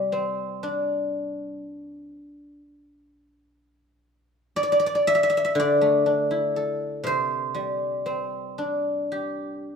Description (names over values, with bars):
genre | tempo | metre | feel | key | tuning
chinese traditional, Chinese solo plucked strings | 60 BPM | 4/4 | rubato | C gong mode | A4 = 437 Hz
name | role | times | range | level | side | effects
guzheng | solo | 0.0-9.8 s | C3 to E5 | -23 LUFS | left 1 dB | none
room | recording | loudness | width
wet recital hall reverb, RT60 1.4 s | minimal, uncompressed stereo recording | -22 LUFS | side -6 dB against mid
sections
0.0-9.8 A section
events
none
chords
none